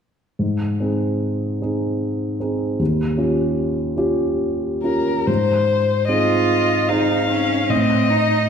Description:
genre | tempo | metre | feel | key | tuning
classical, slow romantic movement for piano quintet | 74 BPM | 3/4 | rubato | Ab major | A4 = 440 Hz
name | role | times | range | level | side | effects
dark baby grand piano | accompaniment | 0.4-8.5 s | Eb2 to Ab4 | -19 LUFS | equal | none
warm violin | melody | 4.8-8.5 s | Bb4 to F5 | -20 LUFS | left 5 dB | none
rich cello | second line | 6.1-8.5 s | C4 to F4 | -20 LUFS | right 6 dB | none
room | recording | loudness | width
wet scoring stage reverb, RT60 1.6 s | heard from further back in the room | -17 LUFS | side -7 dB against mid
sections
0.4-5.3 A section; 5.3-8.5 B section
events
none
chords
0.4 Ab; 2.8 Eb9; 5.3 Ab; 7.7 F7/A (rootless)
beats
| 0.40 1.21 2.01 | 2.80 3.58 4.40 | 5.28 6.09 6.90 | 7.71

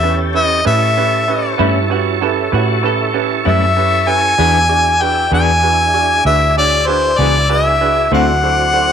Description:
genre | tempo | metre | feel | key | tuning
slow blues | 64 BPM (dotted quarters) | 12/8 | straight | unclear | A4 = 439 Hz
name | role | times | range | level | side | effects
warm harmonica | melody | 0.0-8.9 s | C5 to G#5 | -14 LUFS | left 2 dB | none
clear upright piano | accompaniment | 0.0-8.9 s | C#4 to D5 | -20 LUFS | right 13 dB | none
tonewheel organ | sustained chords | 0.0-8.9 s | F#3 to C#5 | -21 LUFS | equal | chorus vibrato, slow rotary speaker
vintage muted fingered electric bass | bass | 0.0-8.9 s | C#2 to A2 | -18 LUFS | equal | none
clean electric guitar | second line | 1.6-3.3 s | E4 to A4 | -21 LUFS | right 10 dB | none
semi-hollow electric guitar | accompaniment | 1.6-8.3 s | A2 to G#4 | -21 LUFS | left 12 dB | tremolo
room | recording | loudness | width
light reverb, small room reverb | 1960s-style stereo with parts hard left and right | -11 LUFS | side -8 dB against mid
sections
0.0-8.9 A section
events
none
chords
0.0 A7; 4.4 E7; 8.1 D7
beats
| 0.66 1.59 2.52 3.45 | 4.39 5.32 6.25 7.18 | 8.12

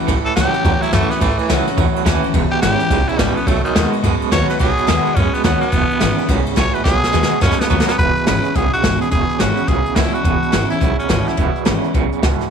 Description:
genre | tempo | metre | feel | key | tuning
rockabilly | 212 BPM | 4/4 | swing 63% on 8ths | E major | A4 = 440 Hz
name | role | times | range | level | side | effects
picked steel-string acoustic guitar | accompaniment | 0.0-12.5 s | E2 to F#4 | -22 LUFS | left 15 dB | none
electric guitar through a small old amp | riff | 0.0-12.5 s | E2 to G#3 | -20 LUFS | right 15 dB | tremolo
upright bass | bass | 0.1-12.4 s | E1 to F#2 | -21 LUFS | equal | none
jazz brush drum kit | drums | 0.1-12.5 s | hi-hat, kick drum, ride cymbal, snare drum | -19 LUFS | equal | none
raspy tenor saxophone | melody | 0.3-11.7 s | D#3 to C#5 | -20 LUFS | left 1 dB | none
room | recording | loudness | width
studio ambience | 1960s-style stereo with parts hard left and right, lossy compression artefacts | -14 LUFS | side -7 dB against mid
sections
0.0-8.0 A section; 8.0-12.5 B section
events
tenor saxophone solo 0.0-8.0; drum fill 6.9-8.0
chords
0.0 A6; 2.3 E6; 3.5 B6; 5.7 E6; 6.9 B6; 8.0 E6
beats
| 0.08 0.36 0.65 0.93 | 1.21 1.49 1.78 2.06 | 2.34 2.62 2.90 3.19 | 3.47 3.75 4.03 4.31 | 4.60 4.88 5.16 5.44 | 5.72 6.01 6.29 6.57 | 6.86 7.14 7.42 7.70 | 7.99 8.27 8.55 8.83 | 9.12 9.40 9.68 9.96 | 10.25 10.53 10.81 11.10 | 11.38 11.66 11.94 12.22

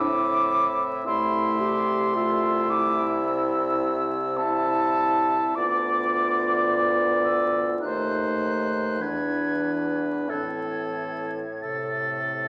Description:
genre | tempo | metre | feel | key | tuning
classical, slow romantic movement for wind quintet | 44-56 BPM | 4/4 | rubato | A minor | A4 = 440 Hz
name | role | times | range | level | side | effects
concert flute | melody | 0.0-12.5 s | A5 to A6 | -29 LUFS | equal | none
clear oboe | second line | 0.0-12.5 s | A4 to E5 | -30 LUFS | equal | none
mellow French horn | accompaniment | 0.0-12.5 s | C3 to C4 | -36 LUFS | equal | none
mellow clarinet | accompaniment | 0.0-12.5 s | C4 to G4 | -32 LUFS | equal | none
clear bassoon | bass | 0.0-12.5 s | C2 to A2 | -32 LUFS | equal | none
room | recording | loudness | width
wet recital hall reverb, RT60 1.3 s | vinyl crackle | -24 LUFS | mono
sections
0.0-12.5 A section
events
none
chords
0.0 Am; 1.1 Am/C; 5.6 Bdim/D; 7.8 D#dim7; 9.0 E7; 10.3 Am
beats
| 1.06 2.16 3.26 4.38 | 5.56 6.69 7.82 9.01 | 10.29 11.62

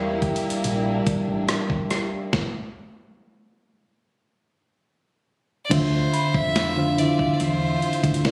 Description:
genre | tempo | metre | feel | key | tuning
contemporary R&B | 71 BPM | 4/4 | straight | unclear | A4 = 439 Hz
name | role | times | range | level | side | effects
mellow FM electric piano | accompaniment | 0.0-8.3 s | C3 to G5 | -26 LUFS | equal | chorus
warm studio string section | sustained chords | 0.0-8.3 s | C3 to E5 | -33 LUFS | equal | none
deep dub fingered electric bass | bass | 0.0-8.3 s | E1 to F2 | -29 LUFS | equal | none
dusty soul sampler-style drum kit | drums | 0.2-8.3 s | crash cymbal, hi-hat, kick drum, rim click, snare drum | -29 LUFS | equal | none
clear fiddle | melody | 5.6-8.3 s | C5 to E5 | -30 LUFS | equal | tape echo
glassy synth bell | texture | 6.1-7.7 s | B5 | -36 LUFS | equal | chorus, tape echo
room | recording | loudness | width
light reverb, digital ambience | recorded on a phone in the room, studio reverb, compression | -23 LUFS | mono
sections
0.0-5.7 A section; 5.7-8.3 B section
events
stop 2.3-5.7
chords
0.0 C7 (rootless); 2.3 N.C.; 5.7 Dm9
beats
0.64 1.49 | 2.33 3.18 4.02 4.87 | 5.71 6.56 7.40 8.25

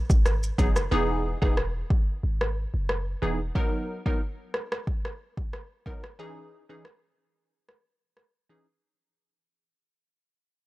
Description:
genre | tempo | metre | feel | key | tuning
dancehall | 91 BPM | 4/4 | straight | unclear | A4 = 440 Hz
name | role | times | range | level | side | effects
warm 808-style bass | bass | 0.0-3.5 s | E1 to G#1 | -28 LUFS | equal | none
deep house drum kit | drums | 0.1-8.3 s | hi-hat, kick drum, rim click, shaker | -25 LUFS | equal | overdrive
wavetable chord stab | accompaniment | 0.6-8.7 s | E3 to A#4 | -29 LUFS | equal | phaser
room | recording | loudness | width
little or no reverb | dry, gritty hardware recording, cassette tape | -25 LUFS | side -18 dB against mid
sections
0.0-8.8 A section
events
fade-out 0.0-8.8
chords
0.0 G#m7; 0.9 Emaj7; 3.6 Bmaj7; 6.2 C#madd9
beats
0.26 | 0.92 1.57 2.23 2.89 | 3.55 4.21 4.87 5.53 | 6.19 6.85 7.51 8.17

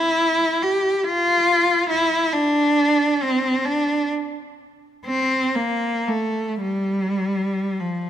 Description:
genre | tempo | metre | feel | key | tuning
classical, free, expressive piece for unaccompanied cello | 30-48 BPM (dotted quarters) | 6/8 | rubato | G dorian | A4 = 440 Hz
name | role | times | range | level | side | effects
rich cello | solo | 0.0-8.1 s | F3 to G4 | -18 LUFS | equal | none
room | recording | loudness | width
moderate concert hall reverb, RT60 2.2 s | close, detailed microphones | -18 LUFS | side -10 dB against mid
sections
0.0-8.1 A section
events
none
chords
none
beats
1.06 | 2.35 3.67 | 5.06 6.62

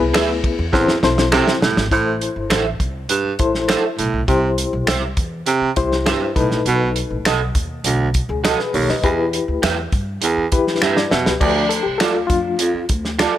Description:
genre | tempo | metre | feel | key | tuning
uptempo 1960s-style soul | 101 BPM | 4/4 | straight | D dorian | A4 = 443 Hz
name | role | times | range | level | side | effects
reed electric piano | accompaniment | 0.0-12.8 s | F3 to E5 | -20 LUFS | left 5 dB | fast tremolo
upright bass | bass | 0.0-13.2 s | G1 to G2 | -24 LUFS | equal | none
electric guitar through a small old amp | stabs | 0.1-13.3 s | F4 to E5 | -22 LUFS | right 6 dB | analog chorus
finger snaps | percussion | 0.1-13.3 s | none | -25 LUFS | left 2 dB | none
warm soul drum kit | drums | 0.2-13.3 s | crash cymbal, hi-hat, kick drum, ride cymbal, snare drum | -20 LUFS | right 1 dB | none
warm baritone saxophone | riff | 0.7-12.8 s | D2 to C3 | -20 LUFS | right 4 dB | none
room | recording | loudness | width
light reverb, small room ambience | none | -16 LUFS | side -12 dB against mid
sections
0.0-1.9 A section; 1.9-11.4 B section; 11.4-13.4 C section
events
drum fill 0.7-1.9, 10.8-11.4; reed electric piano solo 11.4-13.4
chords
0.0 E; 0.7 Am; 4.3 C; 6.4 B7; 9.0 Em; 11.4 Dm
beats
0.14 0.73 1.32 | 1.91 2.50 3.10 3.69 | 4.28 4.88 5.47 6.07 | 6.66 7.25 7.85 8.44 | 9.04 9.63 10.22 10.82 | 11.41 12.01 12.60 13.19

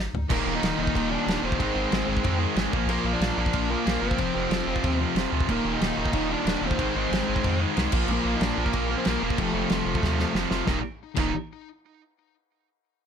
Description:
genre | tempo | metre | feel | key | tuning
punk rock | 185 BPM | 4/4 | straight | unclear | A4 = 440 Hz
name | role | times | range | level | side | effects
pure sine sub bass | bass | 0.0-11.3 s | Eb1 to F2 | -31 LUFS | equal | none
loose indie drum kit | drums | 0.1-11.2 s | crash cymbal, kick drum, snare drum, toms | -29 LUFS | equal | none
high-gain lead guitar | melody | 0.3-11.3 s | A3 to Eb5 | -32 LUFS | left 1 dB | distortion, ping-pong delay
fuzz guitar | riff | 0.3-11.3 s | Eb2 to Bb3 | -32 LUFS | left 1 dB | distortion
sludgy distorted guitar | riff | 0.3-11.3 s | Eb2 to Bb3 | -31 LUFS | left 15 dB | overdrive
tight distorted guitar | riff | 0.3-11.3 s | Eb2 to Eb4 | -29 LUFS | right 14 dB | distortion
room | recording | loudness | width
light reverb | none | -23 LUFS | side -7 dB against mid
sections
0.3-10.7 A section; 10.7-12.0 B section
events
drum fill 0.0-0.3, 10.0-10.7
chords
0.3 Eb5; 1.6 Ab; 2.7 Bb; 4.2 F5; 5.5 Eb5; 6.8 Ab; 7.9 Bb; 9.4 F; 10.7 Eb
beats
| 0.30 0.62 0.95 1.27 | 1.60 1.92 2.25 2.57 | 2.90 3.22 3.55 3.87 | 4.20 4.52 4.84 5.17 | 5.49 5.82 6.14 6.47 | 6.79 7.12 7.44 7.77 | 8.09 8.42 8.74 9.06 | 9.39 9.71 10.04 10.37 | 10.69 11.02 11.34

